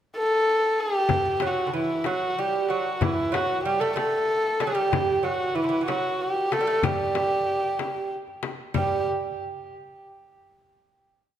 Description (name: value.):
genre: Persian modal ensemble.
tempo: 63 BPM (dotted quarters).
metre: 6/8.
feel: straight.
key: unclear.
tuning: A4 = 439 Hz.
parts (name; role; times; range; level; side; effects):
dark kamancheh; melody; 0.2-9.1 s; E4 to A4; -24 LUFS; equal; tape echo.
frame drum; percussion; 1.1-9.0 s; none; -31 LUFS; left 6 dB; none.
tombak; percussion; 1.1-9.1 s; none; -34 LUFS; left 2 dB; none.
lute; second line; 1.4-9.0 s; D3 to A3; -29 LUFS; right 6 dB; none.
room: wet recital hall reverb, RT60 1.6 s.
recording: none.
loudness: -22 LUFS.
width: side -10 dB against mid.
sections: 0.0-1.1 pickup bar; 1.1-8.8 A section; 8.8-10.7 final note.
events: none.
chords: none.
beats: 0.13 | 1.08 2.04 | 3.00 3.96 | 4.92 5.88 | 6.83 7.79 | 8.75.